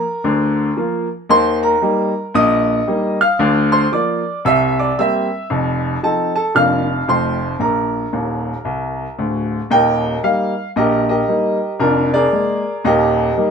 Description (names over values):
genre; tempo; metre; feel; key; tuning
jazz, stride piano; 114 BPM; 4/4; swing 62% on 8ths; Bb major, Eb major from 9.7 s; A4 = 440 Hz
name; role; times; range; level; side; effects
bright baby grand piano; solo; 0.0-13.5 s; D1 to F6; -14 LUFS; equal; none
room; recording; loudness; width
moderate studio reverb, RT60 0.8 s; minimal, uncompressed stereo recording; -15 LUFS; side -6 dB against mid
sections
0.0-9.7 A section; 9.7-13.5 B section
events
grand piano fill 8.1-9.7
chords
0.0 Bb/D; 1.3 Eb; 3.4 Bb/D; 4.4 C7; 5.5 F7; 6.5 Bb/F; 7.1 F; 7.6 Bb; 9.7 Eb; 11.8 Bb7/F; 12.8 Eb